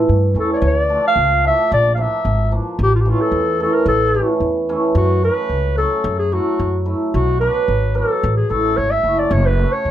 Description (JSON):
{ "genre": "klezmer", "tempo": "110 BPM", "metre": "2/4", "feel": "straight", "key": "A phrygian dominant, F# minor from 5.0 s", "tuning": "A4 = 438 Hz", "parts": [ { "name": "dark clarinet", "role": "melody", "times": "0.0-9.9 s", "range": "F4 to F5", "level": "-18 LUFS", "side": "equal", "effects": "none" }, { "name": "cimbalom", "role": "accompaniment", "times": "0.0-9.7 s", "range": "E3 to F#4", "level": "-21 LUFS", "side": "right 2 dB", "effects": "none" }, { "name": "upright bass", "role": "bass", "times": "0.0-9.9 s", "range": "F#1 to G2", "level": "-18 LUFS", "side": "equal", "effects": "none" } ], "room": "light reverb", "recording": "close, detailed microphones", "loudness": "-14 LUFS", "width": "side -11 dB against mid", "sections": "0.0-5.0 A section; 5.0-9.9 B section", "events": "none", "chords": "0.0 A; 0.6 Dm; 1.7 Bb; 2.8 A; 5.0 F#m; 7.1 Bm; 8.2 A; 9.3 F#m" }